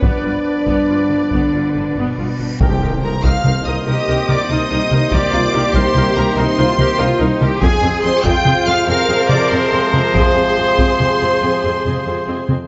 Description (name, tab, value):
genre	cinematic, epic orchestral film score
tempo	95 BPM (dotted quarters)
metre	12/8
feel	straight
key	C minor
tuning	A4 = 441 Hz
part	dark studio violin section	melody	0.0-12.5 s	D5 to G6	-26 LUFS	equal	none
part	warm symphonic violin section	second line	0.0-12.5 s	G4 to G5	-24 LUFS	equal	none
part	rich symphonic viola section	accompaniment	0.0-12.6 s	B3 to Cb5	-28 LUFS	equal	none
part	clear trombone section	sustained chords	0.0-12.5 s	C3 to Cb4	-27 LUFS	equal	none
part	mellow French horn section	sustained chords	0.0-12.5 s	Ab3 to Ab4	-25 LUFS	equal	none
part	clear symphonic double bass section	bass	0.0-12.6 s	G1 to F2	-24 LUFS	equal	none
part	rich symphonic cello section	bass	0.0-12.4 s	G2 to Bb4	-24 LUFS	equal	none
part	taiko ensemble	drums	0.0-12.7 s	none	-21 LUFS	equal	none
part	reverse cymbal and impact	sound effects	2.4-5.1 s	none	-32 LUFS	equal	none
part	clear trumpet	stabs	2.6-12.5 s	C5	-25 LUFS	equal	none
part	timpani	percussion	2.6-3.2 s	C3	-26 LUFS	equal	none
room	moderate scoring stage reverb, RT60 1.9 s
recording	nothing above 7.7 kHz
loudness	-16 LUFS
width	mono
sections	0.0-2.6 A section; 2.6-12.7 B section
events	reverse cymbal 2.4; impact 2.6-5.1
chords	0.0 G7; 2.6 Cm7; 7.6 Fm